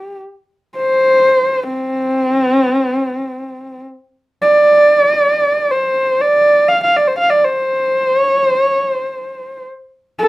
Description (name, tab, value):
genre	mongolian traditional, Mongolian folk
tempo	free time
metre	none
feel	none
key	C zhi mode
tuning	A4 = 440 Hz
part	warm horsehead fiddle	solo	0.0-10.3 s	C4 to F5	-12 LUFS	equal	none
room	moderate small room reverb, RT60 0.5 s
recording	rough home demo mix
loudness	-11 LUFS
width	side -18 dB against mid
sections	0.0-4.0 A section; 4.0-10.3 A section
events	none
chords	none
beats	free time